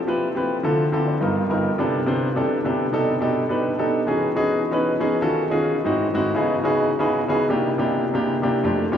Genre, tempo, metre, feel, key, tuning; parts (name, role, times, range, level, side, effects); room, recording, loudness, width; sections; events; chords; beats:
jazz; 210 BPM; 4/4; straight; A4 = 442 Hz
warm grand piano; solo; 0.1-9.0 s; F2 to G5; -19 LUFS; equal
wet cathedral reverb, RT60 6.2 s; in a vast, echoing space; -19 LUFS; side -8 dB against mid
0.0-4.1 A section; 4.1-9.0 B section
grand piano fill 0.9-1.8
0.0 Fmaj7sus2; 0.6 Dm9; 1.2 G7alt; 1.8 Cmaj13; 2.9 B7alt; 4.1 Emaj13; 5.2 D#m7b5; 5.8 G#7b13; 6.4 C#m11; 7.5 C9
0.07 0.36 | 0.65 0.93 1.22 1.50 | 1.79 2.08 2.36 2.65 | 2.93 3.22 3.50 3.79 | 4.07 4.36 4.64 4.93 | 5.22 5.50 5.79 6.07 | 6.36 6.64 6.93 7.21 | 7.50 7.79 8.07 8.36 | 8.64 8.93